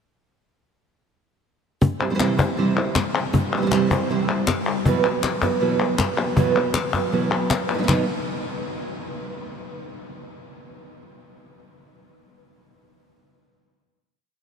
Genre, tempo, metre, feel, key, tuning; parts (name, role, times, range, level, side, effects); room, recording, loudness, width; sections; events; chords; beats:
flamenco; 158 BPM; 4/4; straight; A4 = 438 Hz
nylon-string guitar; accompaniment; 1.8-8.0 s; B2 to C5; -22 LUFS; right 3 dB; wide subtle chorus
cajon; percussion; 1.8-8.0 s; -26 LUFS; left 2 dB
palmas hand claps; percussion; 2.0-8.0 s; -26 LUFS; left 5 dB
wet huge ambient reverb, RT60 8.0 s; dreamy mix soaked in reverb; -19 LUFS; side -6 dB against mid
1.8-7.9 groove; 7.9-9.4 final chord
1.8 C; 4.9 Bsus4; 7.9 B
| 1.81 2.19 2.57 2.95 | 3.33 3.71 4.09 4.47 | 4.85 5.23 5.61 5.99 | 6.37 6.75 7.12 7.50 | 7.88